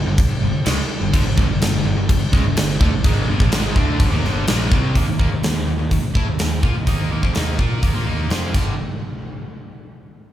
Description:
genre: hard rock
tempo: 126 BPM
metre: 4/4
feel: straight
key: unclear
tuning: A4 = 440 Hz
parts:
  - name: overdriven tonewheel organ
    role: sustained chords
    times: 0.0-4.9 s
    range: G3 to A4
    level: -35 LUFS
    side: right 1 dB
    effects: none
  - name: cranked stack guitar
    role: riff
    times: 0.0-8.7 s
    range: G2 to Bb4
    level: -27 LUFS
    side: right 6 dB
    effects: overdrive
  - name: distorted electric guitar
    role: riff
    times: 0.0-8.7 s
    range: G2 to Bb4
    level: -26 LUFS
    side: left 6 dB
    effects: distortion
  - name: fuzz picked electric bass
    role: bass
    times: 0.0-8.8 s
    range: G1 to Bb2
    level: -23 LUFS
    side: equal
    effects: overdrive
  - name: huge arena drum kit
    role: drums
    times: 0.2-8.7 s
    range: crash cymbal, hi-hat, kick drum, snare drum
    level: -19 LUFS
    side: equal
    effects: none
  - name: crunchy overdriven guitar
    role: riff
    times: 1.1-5.0 s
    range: G2 to D4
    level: -27 LUFS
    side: right 1 dB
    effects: none
room: moderate large studio reverb, RT60 1.3 s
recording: band playing live in one room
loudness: -16 LUFS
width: side -12 dB against mid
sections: 0.0-4.9 A section; 4.9-8.8 B section; 8.8-10.3 C section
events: drum fill 8.5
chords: 0.0 Gm; 4.9 Eb5; 8.5 G5; 8.8 N.C.

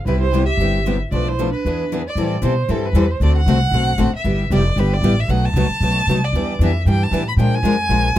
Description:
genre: acoustic string swing (jazz manouche)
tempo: 230 BPM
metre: 4/4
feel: swing 55% on 8ths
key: A minor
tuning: A4 = 441 Hz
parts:
  - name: rich violin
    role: melody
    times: 0.1-8.2 s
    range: A4 to B5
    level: -23 LUFS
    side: right 1 dB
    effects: none
  - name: breathy clarinet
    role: second line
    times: 0.1-2.0 s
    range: D4 to G4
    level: -28 LUFS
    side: right 7 dB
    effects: none
  - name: picked steel-string acoustic guitar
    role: accompaniment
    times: 0.1-8.2 s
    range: B2 to Bb4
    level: -22 LUFS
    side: left 5 dB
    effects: none
  - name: picked steel-string acoustic guitar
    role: accompaniment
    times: 0.1-8.2 s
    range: B2 to B4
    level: -25 LUFS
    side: right 4 dB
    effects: none
  - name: upright bass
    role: bass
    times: 0.1-8.2 s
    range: F1 to B2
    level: -18 LUFS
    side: equal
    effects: none
room: light reverb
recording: close, detailed microphones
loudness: -15 LUFS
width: side -13 dB against mid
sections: 0.0-2.2 A section; 2.2-8.2 B section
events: none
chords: 0.1 Cmaj7; 1.1 Bm7b5; 1.6 E7; 2.2 Am9; 3.2 D7; 4.3 G6; 5.3 B7b9; 6.3 Em7; 7.4 Bb7

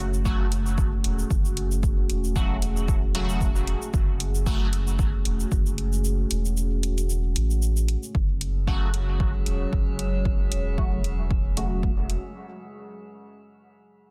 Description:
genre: dub techno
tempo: 114 BPM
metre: 4/4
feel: swing 55% on 16ths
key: F# minor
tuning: A4 = 440 Hz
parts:
  - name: deep dark ambient pad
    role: sustained chords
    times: 0.0-12.3 s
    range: F#3 to C#5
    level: -36 LUFS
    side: equal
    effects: chorus, built-in reverb, sidechain pumping
  - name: soft dub sub bass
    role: bass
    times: 0.0-12.2 s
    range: E1 to A1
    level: -28 LUFS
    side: equal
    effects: sidechain pumping
  - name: electronic shaker and hi-hat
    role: drums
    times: 0.1-12.2 s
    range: none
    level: -36 LUFS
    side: equal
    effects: none
  - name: resonant sweep polysynth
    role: stabs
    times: 0.3-4.7, 8.7-11.9 s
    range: C#3 to F#4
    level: -36 LUFS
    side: equal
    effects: chorus, phaser, sidechain pumping, dub echo
  - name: electronic kick drum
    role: drums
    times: 0.3-11.9 s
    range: none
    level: -28 LUFS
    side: equal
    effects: none
  - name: metallic inharmonic drone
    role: texture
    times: 8.6-12.4 s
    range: G#3 to G#4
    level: -43 LUFS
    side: equal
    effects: chorus, built-in reverb, sidechain pumping
room: digital ambience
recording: dense, heavily limited modern master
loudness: -25 LUFS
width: mono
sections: 0.0-8.1 A section; 8.1-12.4 B section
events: kick drops out 6.0-8.1; filter sweep on analog polysynth 8.1-12.4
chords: 0.0 F#m

